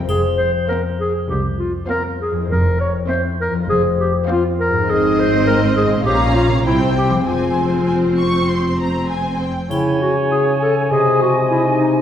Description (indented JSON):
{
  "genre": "cinematic, playful, whimsical film cue",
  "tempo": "100 BPM",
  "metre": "4/4",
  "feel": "straight",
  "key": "F minor",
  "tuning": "A4 = 440 Hz",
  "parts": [
    { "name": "concert harp", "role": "arpeggios", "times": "0.0-12.0 s", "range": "F2 to D#5", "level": "-21 LUFS", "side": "left 3 dB", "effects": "none" },
    { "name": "warm clarinet", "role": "second line", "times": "0.1-11.9 s", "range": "D#4 to Db5", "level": "-19 LUFS", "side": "equal", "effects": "none" },
    { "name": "warm studio cello section", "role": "bass", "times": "0.1-9.5 s", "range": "C2 to C3", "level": "-26 LUFS", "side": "right 2 dB", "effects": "none" },
    { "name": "warm studio double bass section", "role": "bass", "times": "0.1-9.5 s", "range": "F1 to C2", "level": "-24 LUFS", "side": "right 2 dB", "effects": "none" },
    { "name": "triangle", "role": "percussion", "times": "0.1-1.3, 9.7-10.9 s", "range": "none", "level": "-38 LUFS", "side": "left 2 dB", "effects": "none" },
    { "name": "warm studio violin section", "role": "melody", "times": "0.7-9.7 s", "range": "Eb5 to Db6", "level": "-25 LUFS", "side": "left 2 dB", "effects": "none" },
    { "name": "warm studio violin section", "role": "second line", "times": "0.7-9.5 s", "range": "C5 to F5", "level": "-29 LUFS", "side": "left 2 dB", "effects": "none" },
    { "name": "warm studio viola section", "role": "accompaniment", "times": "0.7-9.5 s", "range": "C4 to Db4", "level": "-24 LUFS", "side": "equal", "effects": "none" },
    { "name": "bright flute section", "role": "second line", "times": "9.7-12.0 s", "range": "G#5", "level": "-23 LUFS", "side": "right 1 dB", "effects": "none" },
    { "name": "clear oboe", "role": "second line", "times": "9.7-12.0 s", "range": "C#5 to D#5", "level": "-26 LUFS", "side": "right 2 dB", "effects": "none" },
    { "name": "warm bassoon", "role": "accompaniment", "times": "9.7-12.0 s", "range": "B#2 to C#3", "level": "-20 LUFS", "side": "equal", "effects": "none" }
  ],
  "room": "wet recital hall reverb, RT60 1.5 s",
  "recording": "recorded in a church or concert hall",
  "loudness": "-15 LUFS",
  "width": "side -9 dB against mid",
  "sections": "0.0-9.7 A section; 9.7-12.0 B section",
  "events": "none",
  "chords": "0.1 F5; 4.9 Ab; 6.1 Bbm; 6.7 C; 7.3 Fm; 9.7 C#m; 10.9 G#/B#",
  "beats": "| 0.09 0.70 1.29 1.89 | 2.49 3.09 3.69 4.28 | 4.88 5.46 6.05 6.66 | 7.26 7.87 8.48 9.09 | 9.70 10.31 10.90 11.50"
}